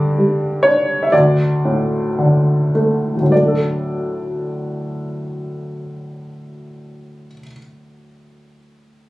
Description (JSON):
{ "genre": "classical, lyrical solo piano", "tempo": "53-68 BPM", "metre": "4/4", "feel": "rubato", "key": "D major", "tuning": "A4 = 440 Hz", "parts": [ { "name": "dark baby grand piano", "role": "solo", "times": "0.0-9.1 s", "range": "D2 to E5", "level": "-16 LUFS", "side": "equal", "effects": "none" } ], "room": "moderate studio reverb, RT60 0.8 s", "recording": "recorded on a phone in the room, studio ambience, compression", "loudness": "-15 LUFS", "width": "side -18 dB against mid", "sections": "0.0-3.3 A section; 3.3-7.6 B section", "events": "slowing down 0.0-3.3", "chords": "0.0 G5; 1.1 D5; 3.3 D" }